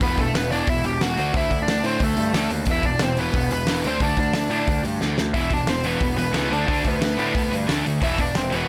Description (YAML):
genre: punk rock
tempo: 180 BPM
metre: 4/4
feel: straight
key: unclear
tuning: A4 = 440 Hz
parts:
  - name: smooth overdriven lead guitar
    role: melody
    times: 0.0-8.7 s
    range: A3 to G5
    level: -27 LUFS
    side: equal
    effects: none
  - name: sludgy distorted guitar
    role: riff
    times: 0.0-8.7 s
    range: E2 to D4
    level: -28 LUFS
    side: equal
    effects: overdrive
  - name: fuzz picked electric bass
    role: bass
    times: 0.0-8.6 s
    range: E1 to A2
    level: -30 LUFS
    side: equal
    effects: overdrive
  - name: loose indie drum kit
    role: drums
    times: 0.0-8.6 s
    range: hi-hat, kick drum, snare drum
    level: -28 LUFS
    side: equal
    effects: none
  - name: tight distorted guitar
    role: riff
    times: 5.3-8.7 s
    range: E2 to D4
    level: -30 LUFS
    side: equal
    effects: distortion
room: light reverb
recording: none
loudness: -22 LUFS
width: mono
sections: 0.0-8.7 A section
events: drum fill 5.0-5.4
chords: 0.0 Em; 1.2 D; 2.7 E5; 3.9 D5; 5.4 E5; 6.5 D5; 8.0 E5